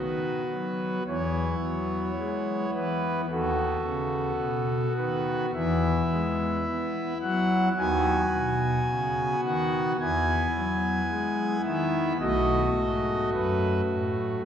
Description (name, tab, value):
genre	classical, chorale-style piece for pipe organ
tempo	54 BPM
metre	4/4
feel	rubato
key	E major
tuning	A4 = 441 Hz
part	pipe organ, foundations	solo	0.0-14.4 s	B1 to G#5	-24 LUFS	equal	none
room	wet church reverb, RT60 3.4 s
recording	none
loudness	-24 LUFS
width	side -9 dB against mid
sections	0.0-14.5 A section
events	none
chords	0.0 B; 1.1 E; 3.3 B7/D#; 5.5 E; 7.8 B/D#; 10.0 E; 12.2 B7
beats	| 1.07 2.18 3.30 4.39 | 5.54 6.66 7.77 8.88 | 10.00 11.10 12.21 13.33